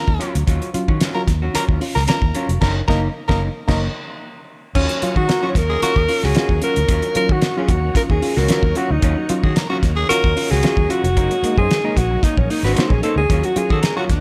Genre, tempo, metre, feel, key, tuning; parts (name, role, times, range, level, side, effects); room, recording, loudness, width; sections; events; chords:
funk; 112 BPM; 4/4; straight; Eb minor; A4 = 439 Hz
growling tenor saxophone; second line; 0.0-6.0, 9.4-10.3, 13.7-14.0 s; Gb4 to Bb4; -27 LUFS; equal
reed electric piano; stabs; 0.0-14.1 s; Eb3 to F4; -28 LUFS; equal; fast tremolo
vintage hollow-body jazz guitar; accompaniment; 0.1-14.1 s; Gb3 to C5; -30 LUFS; equal
vintage muted fingered electric bass; bass; 0.1-14.2 s; F1 to Eb3; -23 LUFS; equal
cloth-damped thuddy drum kit; drums; 0.1-14.2 s; crash cymbal, hi-hat, kick drum, snare drum; -22 LUFS; equal
bright tonewheel organ; sustained chords; 4.7-14.2 s; Eb3 to Db4; -33 LUFS; equal; overdrive, chorus vibrato, slow rotary speaker
breathy alto saxophone; melody; 4.8-14.2 s; Db4 to Db5; -23 LUFS; equal
light reverb, small room ambience; -18 LUFS; mono
0.0-4.8 A section; 4.8-14.2 B section
band accent 2.6-4.8; alto saxophone solo 4.8-14.2
0.0 Ebm9; 2.6 Gb6; 4.8 Ebm9; 11.2 Gb6; 13.3 Ebm9